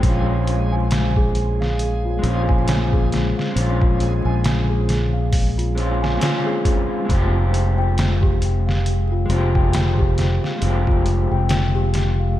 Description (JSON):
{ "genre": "trip hop", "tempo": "68 BPM", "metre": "4/4", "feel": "swing 58% on 16ths", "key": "unclear", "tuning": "A4 = 440 Hz", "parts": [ { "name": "electric guitar at the edge of break-up", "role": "accompaniment", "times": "0.0-12.4 s", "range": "Ab3 to G4", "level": "-24 LUFS", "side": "left 2 dB", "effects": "tremolo, vintage 12-bit sampler grit, tape echo" }, { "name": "fingered electric bass", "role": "bass", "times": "0.0-12.4 s", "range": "F1 to Bb1", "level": "-19 LUFS", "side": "equal", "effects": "none" }, { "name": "trip hop sampler-style drum kit", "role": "drums", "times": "0.0-12.2 s", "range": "hi-hat, kick drum, snare drum", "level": "-22 LUFS", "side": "equal", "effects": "studio ambience" }, { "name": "backwards swelling texture", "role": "texture", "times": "0.0-12.4 s", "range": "Ab3", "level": "-34 LUFS", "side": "equal", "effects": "none" }, { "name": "celesta", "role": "arpeggios", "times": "0.3-12.4 s", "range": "F4 to Ab5", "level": "-28 LUFS", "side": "left 1 dB", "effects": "vintage 12-bit sampler grit, tape echo" } ], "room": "moderate lush hall reverb, RT60 2.5 s", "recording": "dreamy mix soaked in reverb, vinyl crackle", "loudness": "-17 LUFS", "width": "side -14 dB against mid", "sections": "0.0-12.4 A section", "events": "none", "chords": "0.0 Bbm7; 7.1 Fmadd9", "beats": "| 0.03 0.92 1.80 2.68 | 3.56 4.45 5.33 6.21 | 7.09 7.97 8.86 9.74 | 10.62 11.50 12.39" }